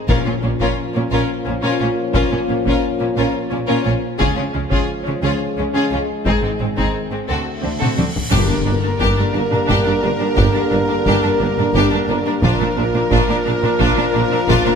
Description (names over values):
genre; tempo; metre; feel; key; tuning
cinematic, epic orchestral film score; 58 BPM (dotted quarters); 6/8; straight; Bb minor, G minor from 8.3 s; A4 = 443 Hz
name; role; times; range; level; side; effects
dark French horn section; sustained chords; 0.0-14.8 s; C4 to Ab4; -25 LUFS; left 4 dB; none
warm symphonic violin section; melody; 0.1-14.8 s; C4 to Bb4; -26 LUFS; left 4 dB; none
bright symphonic violin section; second line; 0.1-14.7 s; Ab3 to G4; -26 LUFS; left 4 dB; none
clear symphonic viola section; accompaniment; 0.1-14.7 s; C4 to D4; -24 LUFS; equal; none
warm trombone section; sustained chords; 0.1-14.8 s; D3 to Bb3; -26 LUFS; right 2 dB; none
rich symphonic cello section; bass; 0.1-14.7 s; G2 to D3; -24 LUFS; right 3 dB; none
warm symphonic double bass section; bass; 0.1-14.6 s; G1 to D2; -24 LUFS; right 3 dB; none
taiko ensemble; drums; 0.1-14.8 s; none; -22 LUFS; left 1 dB; none
timpani; percussion; 0.1-1.1, 8.3-9.3 s; G2 to Bb2; -25 LUFS; left 5 dB; none
cymbal swell and impact; sound effects; 7.5-10.4 s; none; -29 LUFS; equal; none
dark trumpet; stabs; 8.3-14.8 s; Bb4; -22 LUFS; equal; none
warm tuba; bass; 8.3-14.5 s; G1 to Bb1; -25 LUFS; right 4 dB; none
room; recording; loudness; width
moderate scoring stage reverb, RT60 2.1 s; none; -15 LUFS; side -6 dB against mid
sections
0.0-8.3 A section; 8.3-14.8 B section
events
cymbal swell 7.5-8.3; drum fill 7.8-8.3; impact 8.3-10.4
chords
0.1 Bbm; 4.2 Db; 6.3 Ab; 7.3 D7; 8.3 Gm; 12.4 Bb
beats
| 0.08 1.11 | 2.14 3.17 | 4.20 5.23 | 6.26 7.29 | 8.32 9.35 | 10.38 11.41 | 12.44 13.46 | 14.49